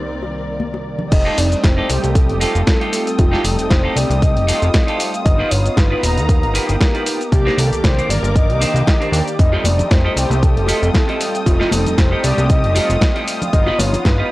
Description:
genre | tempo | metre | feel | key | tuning
nu-disco, nu disco | 116 BPM | 4/4 | swing 54% on 16ths | F mixolydian | A4 = 441 Hz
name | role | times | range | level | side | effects
soft octave-layered synth lead | melody | 0.0-14.3 s | D#4 to Eb5 | -22 LUFS | left 1 dB | chorus, tremolo
mellow synth brass | accompaniment | 0.0-14.3 s | C2 to A#5 | -23 LUFS | right 1 dB | chorus, phaser, sidechain pumping
dark studio string section | sustained chords | 0.0-14.3 s | Eb3 to Eb6 | -29 LUFS | left 1 dB | sidechain pumping
bongos and congas | percussion | 0.2-1.1, 9.5-14.0 s | none | -25 LUFS | left 2 dB | none
fat analog bass | bass | 1.1-14.2 s | D#1 to D#2 | -18 LUFS | equal | none
dusty soul sampler-style drum kit | drums | 1.1-14.2 s | cabasa, crash cymbal, hi-hat, snare drum | -22 LUFS | equal | none
electronic kick drum | drums | 1.1-14.2 s | none | -15 LUFS | equal | none
clean electric guitar | riff | 1.2-14.3 s | D4 to Eb5 | -24 LUFS | right 2 dB | wide subtle chorus
room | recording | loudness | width
little or no reverb | dry, gritty hardware recording, cassette tape | -13 LUFS | side -18 dB against mid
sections
0.0-1.1 A section; 1.1-14.3 B section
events
drop 1.1-14.3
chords
0.0 Cm9; 1.1 F9; 5.3 G7alt; 7.3 Cm9; 9.4 F9; 13.5 G7b13

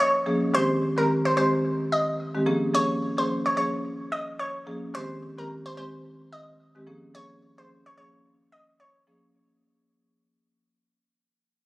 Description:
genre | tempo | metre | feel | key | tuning
afrobeats | 109 BPM | 4/4 | swing 58% on 16ths | unclear | A4 = 441 Hz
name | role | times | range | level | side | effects
analog pluck | melody | 0.0-9.2 s | Bb4 to Eb5 | -26 LUFS | equal | chorus, tape echo
marimba with medium mallets | accompaniment | 0.3-9.3 s | Eb3 to Ab4 | -27 LUFS | equal | none
room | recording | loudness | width
light reverb, small room ambience | recorded on a phone in the room, studio ambience, compression | -23 LUFS | side -20 dB against mid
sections
0.0-9.3 A section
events
fade-out 0.0-9.3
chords
0.0 Bbm7; 0.5 Abmaj7; 2.5 Bbm7; 4.9 Abmaj7; 6.9 Bbm7

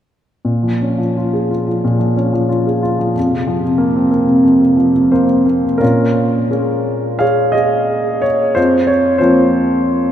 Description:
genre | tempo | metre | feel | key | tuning
classical, lyrical solo piano | 89 BPM | 4/4 | uneven beats, rubato | Bb minor | A4 = 441 Hz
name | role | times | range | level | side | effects
clear grand piano | solo | 0.4-10.1 s | F2 to F5 | -12 LUFS | equal | none
room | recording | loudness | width
wet cathedral reverb, RT60 5.1 s | in a vast, echoing space | -12 LUFS | side -10 dB against mid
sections
0.5-5.8 A section; 5.8-10.1 B section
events
grand piano fill 4.8-5.8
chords
0.5 Bbm7; 3.2 Fsus4; 5.8 Bbm7; 8.6 Fsus4

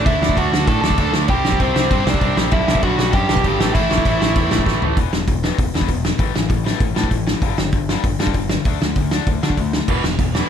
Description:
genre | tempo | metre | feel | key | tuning
punk rock | 195 BPM | 4/4 | straight | E minor | A4 = 439 Hz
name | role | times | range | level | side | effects
dark smooth lead guitar | melody | 0.0-4.6 s | C4 to A5 | -21 LUFS | left 1 dB | overdrive
overdriven semi-hollow guitar | riff | 0.0-5.0, 9.9-10.5 s | E2 to D4 | -22 LUFS | right 17 dB | none
tight distorted guitar | riff | 0.0-10.5 s | E2 to D4 | -24 LUFS | left 15 dB | distortion
growling picked electric bass | bass | 0.0-10.4 s | E1 to D3 | -23 LUFS | equal | overdrive
loose indie drum kit | drums | 0.1-10.4 s | crash cymbal, hi-hat, kick drum, snare drum, toms | -19 LUFS | equal | none
room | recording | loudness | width
little or no reverb | none | -15 LUFS | side -8 dB against mid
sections
0.0-5.0 A section; 5.0-10.5 B section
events
drum fill 4.7-5.0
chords
0.1 D; 1.3 C5; 2.5 G/B; 3.6 A5; 5.0 E5; 6.2 A5; 7.4 G5; 8.7 D5; 9.9 E5

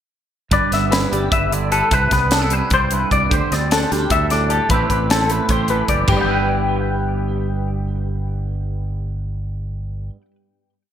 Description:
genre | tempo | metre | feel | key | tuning
math rock and midwest emo | 302 BPM (eighths) | 7/8 | straight | G major | A4 = 441 Hz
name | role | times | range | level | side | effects
twangy electric guitar | accompaniment | 0.5-10.4 s | G2 to D5 | -23 LUFS | right 8 dB | wide subtle chorus
clean electric guitar | arpeggios | 0.5-10.2 s | G4 to G5 | -20 LUFS | left 5 dB | ensemble chorus, digital delay
modern bright fingered electric bass | bass | 0.5-10.1 s | F#1 to D2 | -22 LUFS | equal | none
crisp fusion drum kit | drums | 0.5-6.2 s | china cymbal, hi-hat, kick drum, snare drum, toms | -21 LUFS | equal | gated reverb
room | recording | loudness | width
moderate plate reverb, RT60 1.6 s, small room ambience | bright 1980s-style digital production | -16 LUFS | side -9 dB against mid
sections
0.5-6.1 A section; 6.1-8.9 final chord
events
none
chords
0.5 G6; 1.9 Cmaj7; 3.3 D7sus4; 4.7 Am7; 6.1 G6

